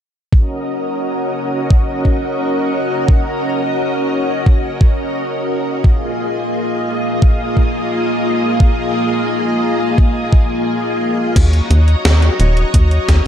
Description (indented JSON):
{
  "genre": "synthwave",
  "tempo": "87 BPM",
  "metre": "4/4",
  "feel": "straight",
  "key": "Eb minor",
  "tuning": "A4 = 440 Hz",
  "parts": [
    { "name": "string machine, full ensemble", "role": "sustained chords", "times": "0.3-13.3 s", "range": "Bb3 to Bb5", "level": "-17 LUFS", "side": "equal", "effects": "ensemble chorus, sidechain pumping" },
    { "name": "electronic kick drum", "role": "drums", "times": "0.3-13.2 s", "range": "none", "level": "-12 LUFS", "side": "equal", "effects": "none" },
    { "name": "tight sequencer bass", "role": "bass", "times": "11.4-13.2 s", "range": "Eb1 to Eb2", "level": "-11 LUFS", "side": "equal", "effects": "sidechain pumping" },
    { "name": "gated 80s digital drum machine", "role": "drums", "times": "11.4-13.2 s", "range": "crash cymbal, hi-hat, snare drum", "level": "-20 LUFS", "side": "equal", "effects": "gated reverb, gated reverb snare" }
  ],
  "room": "moderate lush hall reverb, RT60 1.9 s, digital ambience",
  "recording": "dark, warm production",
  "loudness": "-13 LUFS",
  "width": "side -10 dB against mid",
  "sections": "0.3-11.4 A section; 11.4-13.3 B section",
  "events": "filter sweep on string machine 0.3-11.4; break 10.7-11.4",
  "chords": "0.3 Ebm7; 5.8 Bb7sus4; 11.4 Ebm7"
}